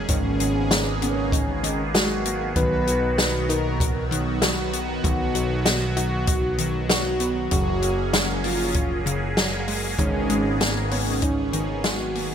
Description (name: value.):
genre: synthwave.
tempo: 97 BPM.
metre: 4/4.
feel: straight.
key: unclear.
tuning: A4 = 442 Hz.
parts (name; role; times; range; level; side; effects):
phased analog pad; sustained chords; 0.0-12.3 s; Eb3 to Ab4; -29 LUFS; equal; phaser, chorus, sidechain pumping.
wide unison pluck; arpeggios; 0.0-12.3 s; Db3 to F#4; -31 LUFS; left 3 dB; digital delay.
fat analog bass; bass; 0.0-12.3 s; Gb1 to B1; -27 LUFS; equal; tube saturation, sidechain pumping.
wide unison lead; melody; 0.1-12.3 s; Db4 to B4; -27 LUFS; right 1 dB; cassette tape, ping-pong delay.
kick drum; drums; 0.1-11.3 s; none; -26 LUFS; equal; none.
open jazz drum kit; drums; 0.1-12.3 s; hi-hat, snare drum; -25 LUFS; left 1 dB; none.
room: light reverb.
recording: bright 1980s-style digital production, faint mains hum.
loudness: -20 LUFS.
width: side -8 dB against mid.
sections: 0.0-12.3 A section.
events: fade-out 10.8-12.3.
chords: 0.1 Abmadd9; 2.6 B; 7.5 Gbadd9; 10.0 Abmadd9.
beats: | 0.09 0.71 1.33 1.95 | 2.56 3.18 3.80 4.42 | 5.04 5.66 6.28 6.89 | 7.51 8.13 8.75 9.37 | 9.99 10.61 11.22 11.84.